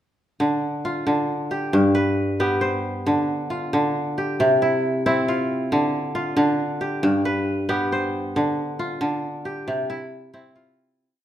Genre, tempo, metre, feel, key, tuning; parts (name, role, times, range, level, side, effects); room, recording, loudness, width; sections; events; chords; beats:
west african traditional, West African string and xylophone music; 91 BPM (dotted quarters); 12/8; straight; D dorian; A4 = 440 Hz
kora; solo; 0.4-11.2 s; G2 to C5; -20 LUFS; equal
wet recital hall reverb, RT60 1.3 s; minimal, uncompressed stereo recording; -20 LUFS; side -11 dB against mid
0.4-11.0 A section
fade-out 8.4-11.0
0.4 Dm; 1.7 G; 3.1 Dm; 4.4 C; 5.7 Dm; 7.0 G; 8.4 Dm; 9.7 C
| 0.41 1.07 1.74 2.40 | 3.07 3.73 4.39 5.05 | 5.72 6.38 7.04 7.70 | 8.36 9.01 9.67 10.33